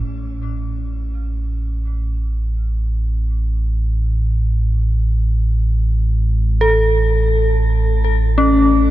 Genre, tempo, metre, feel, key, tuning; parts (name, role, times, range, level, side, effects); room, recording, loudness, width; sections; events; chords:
dark ambient drone; free time; A major; A4 = 441 Hz
dark detuned synth bell; arpeggios; 0.0-8.9 s; C#4 to A4; -18 LUFS; left 1 dB; chorus, tremolo, ping-pong delay, shimmer reverb
deep rumbling drone; drone; 0.0-8.9 s; A1 to A2; -17 LUFS; right 1 dB; built-in reverb
moderate huge ambient reverb, RT60 7.7 s; -15 LUFS; side -15 dB against mid
0.1-8.9 A section
0.1 A